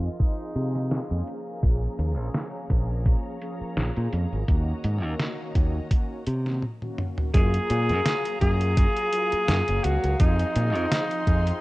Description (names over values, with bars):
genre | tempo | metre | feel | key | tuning
vaporwave | 84 BPM | 4/4 | swing 55% on 16ths | unclear | A4 = 441 Hz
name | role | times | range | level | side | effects
mellow synth brass | accompaniment | 0.0-11.6 s | Eb3 to F5 | -35 LUFS | equal | lush chorus, analog delay
warm studio string section | sustained chords | 0.0-11.6 s | Gb4 to C6 | -39 LUFS | equal | low-pass filter
modern bright fingered electric bass | bass | 0.0-11.5 s | Gb1 to C3 | -25 LUFS | equal | none
breathy alto saxophone | melody | 0.2-1.2, 7.3-11.6 s | Eb4 to Ab4 | -26 LUFS | left 1 dB | vintage 12-bit sampler grit, tape echo
detuned 8-bit digital drum machine | drums | 0.2-11.6 s | hi-hat, snare drum, toms | -30 LUFS | equal | none
electronic kick drum | drums | 0.2-11.4 s | none | -22 LUFS | equal | none
room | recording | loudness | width
light reverb | rough home demo mix, cassette tape, low-pass filter | -22 LUFS | side -20 dB against mid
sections
0.0-7.3 A section; 7.3-11.6 B section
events
filter sweep on string section 0.0-7.3; filter sweep 0.0-7.3; break 6.6-7.3; drum fill 6.6-7.3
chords
0.0 Fm7; 1.3 Bbm7; 4.5 Ebm7; 7.3 Gbmaj9; 10.2 Fm7